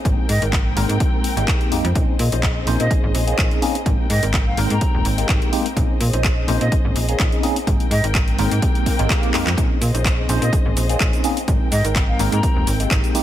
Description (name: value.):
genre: filtered disco house.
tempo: 126 BPM.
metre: 4/4.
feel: swing 54% on 16ths.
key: unclear.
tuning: A4 = 442 Hz.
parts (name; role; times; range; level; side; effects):
rich studio string section; sustained chords; 0.0-13.2 s; C4 to G5; -29 LUFS; left 2 dB; sidechain pumping, low-pass filter.
tine electric piano; accompaniment; 0.1-13.2 s; Ab3 to C5; -24 LUFS; equal; medium stereo tremolo, phaser, vintage 12-bit sampler grit, sidechain pumping, low-pass filter.
slap-like FM bass; bass; 0.1-13.0 s; Eb1 to Bb2; -21 LUFS; equal; sidechain pumping, low-pass filter.
electronic kick drum; drums; 0.1-13.0 s; none; -20 LUFS; equal; none.
house drum kit; drums; 0.1-13.2 s; cabasa, handclaps, hi-hat; -25 LUFS; equal; sidechain pumping on hats, sidechain pumping on perc.
silver concert flute; melody; 0.3-12.7 s; Eb5 to Bb5; -28 LUFS; equal; sidechain pumping, low-pass filter, tape echo.
swell; sound effects; 8.8-9.6 s; none; -30 LUFS; right 3 dB; none.
room: light reverb.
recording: none.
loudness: -16 LUFS.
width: side -12 dB against mid.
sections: 0.0-13.2 A section.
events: swell 8.8-9.6; drum fill 9.3.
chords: 0.1 Abmaj9; 2.0 Bbm11; 3.9 Abmaj9; 5.8 Bbm11; 7.7 Abmaj9; 9.6 Bbm11; 11.5 Abmaj9.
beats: | 0.05 0.53 1.00 1.48 | 1.96 2.43 2.91 3.39 | 3.86 4.34 4.82 5.29 | 5.77 6.24 6.72 7.20 | 7.67 8.15 8.62 9.10 | 9.58 10.05 10.53 11.01 | 11.48 11.96 12.43 12.91.